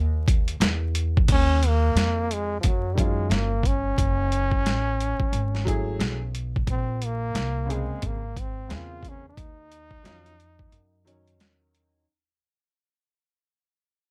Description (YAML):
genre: hip hop, jazz-hop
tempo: 89 BPM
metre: 4/4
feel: swing 61% on 16ths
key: Eb minor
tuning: A4 = 435 Hz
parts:
  - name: upright bass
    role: bass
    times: 0.0-12.0 s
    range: Gb1 to Gb2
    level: -28 LUFS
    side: equal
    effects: none
  - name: boom bap sampler-style drum kit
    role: drums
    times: 0.3-11.9 s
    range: crash cymbal, hi-hat, kick drum, snare drum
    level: -27 LUFS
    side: equal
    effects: overdrive
  - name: bright trombone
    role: melody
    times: 1.3-11.4 s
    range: F3 to F4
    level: -31 LUFS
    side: equal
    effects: none
  - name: clear upright piano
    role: accompaniment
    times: 3.0-12.0 s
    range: Db3 to Ab4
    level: -35 LUFS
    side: equal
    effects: none
room: little or no reverb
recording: vinyl crackle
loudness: -25 LUFS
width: mono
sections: 0.0-1.3 A section; 1.3-12.1 B section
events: fade-out 1.3-12.1; break 10.7-12.1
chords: 0.0 N.C.; 1.3 Ebm9; 4.0 Gbm9; 6.7 Bbm9; 9.4 Ebm9